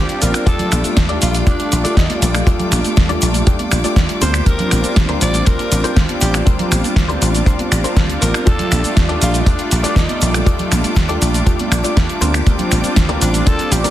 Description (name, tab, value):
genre	nu-disco, nu disco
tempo	120 BPM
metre	4/4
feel	straight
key	unclear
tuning	A4 = 440 Hz
part	breathy tenor saxophone	melody	0.0-13.9 s	D4 to D5	-24 LUFS	equal	ping-pong delay
part	warm analog pad	accompaniment	0.0-13.9 s	G3 to D5	-21 LUFS	equal	chorus, cassette tape, sidechain pumping, ping-pong delay
part	rich chamber violin section	sustained chords	0.0-13.9 s	A4 to D6	-29 LUFS	left 1 dB	sidechain pumping
part	direct-recorded clean electric guitar	riff	0.0-13.9 s	D4 to D5	-25 LUFS	left 4 dB	ensemble chorus, ping-pong delay
part	dry thumbed slap bass	bass	0.0-13.9 s	A1 to Eb2	-18 LUFS	equal	none
part	pop drum kit	drums	0.1-13.9 s	finger snaps, hi-hat, shaker, snare drum	-21 LUFS	right 1 dB	soft clipping on snare, studio ambience
part	cabasa, congas and bongos	percussion	0.1-13.9 s	none	-27 LUFS	right 1 dB	none
part	soft round pluck	arpeggios	0.5-13.9 s	G3 to G4	-28 LUFS	right 2 dB	none
part	kick drum	drums	0.5-13.6 s	none	-14 LUFS	equal	studio ambience
room	studio reverb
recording	dense, heavily limited modern master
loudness	-13 LUFS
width	side -13 dB against mid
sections	0.0-13.9 A section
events	none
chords	0.5 Ebmaj9#11; 4.2 Bb69; 8.5 Ebmaj9#11; 12.2 Bb69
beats	| 0.47 0.97 1.47 1.97 | 2.47 2.97 3.47 3.97 | 4.47 4.97 5.47 5.97 | 6.47 6.97 7.47 7.97 | 8.47 8.97 9.47 9.97 | 10.47 10.97 11.47 11.97 | 12.47 12.97 13.47